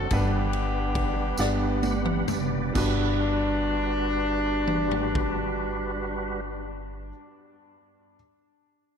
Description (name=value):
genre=slow gospel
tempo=42-49 BPM (dotted quarters)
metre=6/8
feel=straight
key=G major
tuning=A4 = 441 Hz
part: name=warm horn section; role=melody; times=0.0-6.4 s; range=B3 to A4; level=-30 LUFS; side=left 3 dB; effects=tape echo
part: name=clear baby grand piano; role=accompaniment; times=0.0-8.2 s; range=G2 to F#5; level=-32 LUFS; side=right 1 dB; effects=none
part: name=percussive tonewheel organ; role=sustained chords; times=0.0-6.4 s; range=G3 to F#5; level=-31 LUFS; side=right 3 dB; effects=slow rotary speaker, chorus vibrato
part: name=upright bass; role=bass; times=0.0-7.1 s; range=F#1 to G1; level=-30 LUFS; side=equal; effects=none
part: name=swinging big-band drum kit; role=drums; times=0.1-5.4 s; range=crash cymbal, kick drum, ride cymbal, snare drum, toms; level=-31 LUFS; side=equal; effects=none
part: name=tambourine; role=percussion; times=0.1-3.2 s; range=none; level=-41 LUFS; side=right 3 dB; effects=none
room=moderate lush hall reverb, RT60 2.4 s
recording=dreamy mix soaked in reverb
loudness=-24 LUFS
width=side -7 dB against mid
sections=0.0-2.8 A section; 2.8-5.6 B section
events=slowing down 0.0-2.8; drum fill 1.4-2.8; tonewheel organ fill 1.4-2.8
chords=0.1 Gmaj7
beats=| 0.12 1.39 | 2.77 4.21